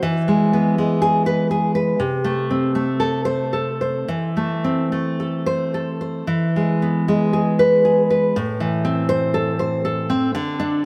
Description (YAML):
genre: romantic piece for solo classical guitar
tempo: 54-63 BPM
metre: 4/4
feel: rubato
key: A minor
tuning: A4 = 441 Hz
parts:
  - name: nylon-string guitar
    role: solo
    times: 0.0-10.8 s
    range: A2 to C5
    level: -20 LUFS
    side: equal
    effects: none
room: wet plate reverb, RT60 2.9 s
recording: heard from further back in the room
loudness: -20 LUFS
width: mono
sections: 0.0-8.4 A section; 8.4-10.8 B section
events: none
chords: 0.0 E; 2.0 Am/C; 4.1 Am/E; 6.2 E; 8.4 Am